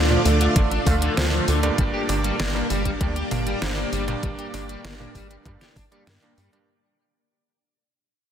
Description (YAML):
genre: synthwave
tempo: 98 BPM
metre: 4/4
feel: straight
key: G minor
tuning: A4 = 444 Hz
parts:
  - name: string machine, full ensemble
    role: sustained chords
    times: 0.0-6.6 s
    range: A3 to D5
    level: -27 LUFS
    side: right 1 dB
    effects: ensemble chorus, sidechain pumping
  - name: electric guitar at the edge of break-up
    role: riff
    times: 0.0-6.6 s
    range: D3 to G4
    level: -29 LUFS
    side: left 3 dB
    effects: analog chorus, digital delay
  - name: clear electric grand piano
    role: stabs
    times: 0.0-6.7 s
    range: G2 to F5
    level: -28 LUFS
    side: right 4 dB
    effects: digital delay
  - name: tight sequencer bass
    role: bass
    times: 0.0-6.5 s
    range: G1 to G2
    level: -24 LUFS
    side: equal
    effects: tube saturation
  - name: pop drum kit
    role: drums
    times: 0.1-6.7 s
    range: hi-hat, snare drum, toms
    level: -29 LUFS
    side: left 1 dB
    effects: overdrive
  - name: electronic kick drum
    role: drums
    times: 0.6-5.9 s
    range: none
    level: -24 LUFS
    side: equal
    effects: overdrive
room: light reverb, digital ambience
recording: dense, heavily limited modern master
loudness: -20 LUFS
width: side -9 dB against mid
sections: 0.0-6.7 A section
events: fade-out 0.2-6.7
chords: 0.0 Dm; 1.8 Gm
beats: 0.56 1.17 | 1.78 2.40 3.01 3.62 | 4.23 4.85 5.46 6.07